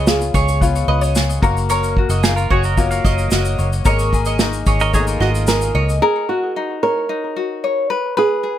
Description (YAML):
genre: acoustic pop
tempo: 111 BPM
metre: 4/4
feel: straight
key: Eb minor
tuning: A4 = 440 Hz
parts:
  - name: flamenco guitar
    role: melody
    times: 0.0-1.4, 5.2-8.6 s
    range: Gb4 to Bb4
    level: -20 LUFS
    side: right 4 dB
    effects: ping-pong delay
  - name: felt-muted upright piano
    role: accompaniment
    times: 0.0-6.0 s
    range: A3 to F5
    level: -26 LUFS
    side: left 6 dB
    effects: none
  - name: tenor ukulele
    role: accompaniment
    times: 0.0-8.6 s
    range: Eb4 to Eb5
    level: -22 LUFS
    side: left 6 dB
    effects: none
  - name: mandolin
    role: arpeggios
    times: 0.0-5.9 s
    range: Db5 to Eb5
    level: -24 LUFS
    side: right 6 dB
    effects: ping-pong delay
  - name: vintage muted fingered electric bass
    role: bass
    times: 0.0-6.0 s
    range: Gb1 to Db2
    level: -19 LUFS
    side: equal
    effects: none
  - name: unplugged drum kit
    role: drums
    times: 0.1-6.0 s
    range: kick drum, shaker, snare drum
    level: -19 LUFS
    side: equal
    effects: none
  - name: pedal steel guitar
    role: second line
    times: 2.2-5.8 s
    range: Eb4 to F5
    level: -24 LUFS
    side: right 5 dB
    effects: none
room: light reverb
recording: none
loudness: -15 LUFS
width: side -11 dB against mid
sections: 0.0-6.0 A section; 6.0-8.6 B section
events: none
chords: 0.0 Db7; 1.4 Gbmaj7; 3.9 Absus2; 6.0 Ebm7; 7.9 Db7(no3)